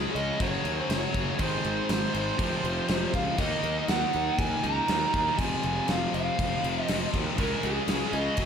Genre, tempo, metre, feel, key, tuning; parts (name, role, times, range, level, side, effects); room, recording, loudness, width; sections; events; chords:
hard rock; 120 BPM; 4/4; straight; F phrygian; A4 = 441 Hz
lead guitar through a small cranked amp; melody; 0.0-8.5 s; Ab4 to Bb5; -30 LUFS; right 1 dB; overdrive, slapback echo
sludgy distorted guitar; riff; 0.0-8.5 s; F2 to F4; -38 LUFS; equal
tight distorted guitar; riff; 0.0-8.5 s; F2 to Eb4; -33 LUFS; left 12 dB; distortion
tight distorted guitar; riff; 0.0-8.5 s; F2 to Eb4; -34 LUFS; right 12 dB; distortion
fuzz fingered electric bass; bass; 0.0-8.5 s; F1 to Eb2; -33 LUFS; equal; overdrive
gated 80s drum kit; drums; 0.2-8.5 s; crash cymbal, kick drum, snare drum; -31 LUFS; equal
light reverb; -25 LUFS; side -7 dB against mid
0.0-8.5 A section
0.4 Gb; 1.4 Ab; 2.4 Fm; 3.4 Ebm; 5.4 Fm; 7.4 Db